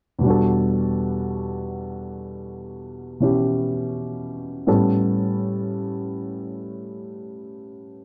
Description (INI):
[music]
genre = jazz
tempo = 54 BPM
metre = 4/4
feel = swing 69% on 8ths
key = unclear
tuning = A4 = 439 Hz
[part]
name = dark baby grand piano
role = accompaniment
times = 0.2-8.0 s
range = E2 to A4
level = -24 LUFS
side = equal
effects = none
[sound]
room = wet club reverb, RT60 0.5 s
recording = dark, warm production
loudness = -23 LUFS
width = mono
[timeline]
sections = 0.2-8.0 A section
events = none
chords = 0.2 Em11; 4.7 A9